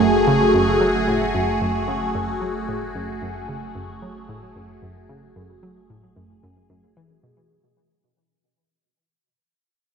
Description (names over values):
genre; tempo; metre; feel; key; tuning
ambient, sequencer-driven space music; 112 BPM; 4/4; straight; F# minor; A4 = 438 Hz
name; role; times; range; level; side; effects
phased analog pad; sustained chords; 0.0-7.5 s; A3 to G#4; -20 LUFS; right 1 dB; phaser, chorus
analog pluck; riff; 0.0-7.4 s; F#2 to F#3; -26 LUFS; equal; chorus, tape echo
warm sub bass; bass; 0.0-7.5 s; F#1; -37 LUFS; equal; none
room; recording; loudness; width
wet concert hall reverb, RT60 2.5 s; none; -18 LUFS; side -6 dB against mid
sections
0.0-7.5 A section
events
fade-out on sub bass 0.0-7.5; fade-out 0.0-7.5; filter sweep on synth arpeggio sound 0.0-7.5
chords
0.0 F#madd9